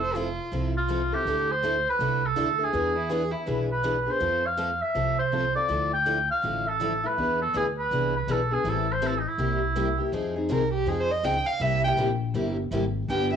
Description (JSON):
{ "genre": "acoustic string swing (jazz manouche)", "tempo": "162 BPM", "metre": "4/4", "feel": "swing 62% on 8ths", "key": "F minor from 10.1 s", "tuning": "A4 = 437 Hz", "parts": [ { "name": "warm oboe", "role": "melody", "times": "0.0-10.0 s", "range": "D#4 to G5", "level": "-26 LUFS", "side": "right 1 dB", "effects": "cassette tape, plate reverb" }, { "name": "warm violin", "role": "second line", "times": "0.0-0.6, 3.0-3.6, 10.5-13.4 s", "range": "E4 to G5", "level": "-28 LUFS", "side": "right 1 dB", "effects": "cassette tape, plate reverb" }, { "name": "upright bass", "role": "bass", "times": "0.0-13.4 s", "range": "F1 to F2", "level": "-30 LUFS", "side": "right 1 dB", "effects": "none" }, { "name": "picked steel-string acoustic guitar", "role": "accompaniment", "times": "0.1-13.3 s", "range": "C3 to B4", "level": "-36 LUFS", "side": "right 7 dB", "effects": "cassette tape, plate reverb" }, { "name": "picked steel-string acoustic guitar", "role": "accompaniment", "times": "0.2-13.4 s", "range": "C3 to A4", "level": "-30 LUFS", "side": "left 4 dB", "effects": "cassette tape, plate reverb" } ], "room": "moderate booth ambience, RT60 0.2 s", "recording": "home recording on cassette, studio reverb", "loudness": "-23 LUFS", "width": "side -8 dB against mid", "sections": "0.0-10.1 A section; 10.1-13.4 B section", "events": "violin solo 10.1-13.4", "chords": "0.0 Fmaj7; 1.3 Dsus2; 2.7 E7; 4.2 F; 5.7 Dmadd9; 7.2 E7; 8.7 Am7; 9.4 C7; 10.1 Fm7; 11.6 C7" }